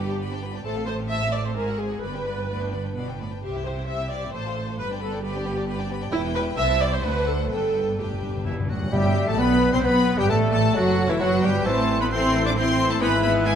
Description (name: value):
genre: quick classical-period movement for symphony orchestra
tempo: 132 BPM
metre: 3/4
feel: rubato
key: G major from 6.1 s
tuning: A4 = 440 Hz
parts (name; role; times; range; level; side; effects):
- clear studio violin section; melody; 0.0-13.6 s; E5 to D6; -32 LUFS; left 4 dB; none
- rich studio violin section; second line; 0.0-13.6 s; A3 to E5; -34 LUFS; left 3 dB; none
- rich studio viola section; accompaniment; 0.0-13.6 s; E3 to E5; -27 LUFS; equal; none
- clear studio cello section; bass; 0.0-13.6 s; C2 to D4; -30 LUFS; right 2 dB; none
- rich studio double bass section; bass; 0.0-13.6 s; E1 to D2; -28 LUFS; right 2 dB; none
- timpani; percussion; 7.5-9.6 s; G2; -30 LUFS; left 1 dB; none
- clear oboe; second line; 8.5-13.6 s; E4 to D5; -32 LUFS; equal; none
- mellow silver concert flute; second line; 8.9-13.6 s; A4 to E5; -30 LUFS; left 2 dB; none
- warm clarinet; second line; 8.9-13.2 s; E4 to C5; -31 LUFS; left 2 dB; none
- warm bassoon; accompaniment; 8.9-13.2 s; E3 to C4; -29 LUFS; right 1 dB; none
- warm French horn section; sustained chords; 8.9-13.6 s; E3 to E4; -27 LUFS; left 4 dB; none
- mellow trumpet section; stabs; 8.9-13.6 s; E4 to C5; -30 LUFS; left 1 dB; none
room: moderate concert hall reverb, RT60 2.1 s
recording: dark, warm production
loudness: -21 LUFS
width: side -8 dB against mid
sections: 0.0-8.9 A section; 8.9-13.6 B section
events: timpani fill 7.5-8.9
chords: 0.0 G; 0.6 F/A; 1.6 Ab7; 2.0 G; 3.4 C; 4.3 F/A; 4.8 G; 6.1 Em; 6.6 Am/C; 7.0 D7; 7.5 G; 10.3 D/A; 11.2 G; 11.7 Am; 13.0 E/G#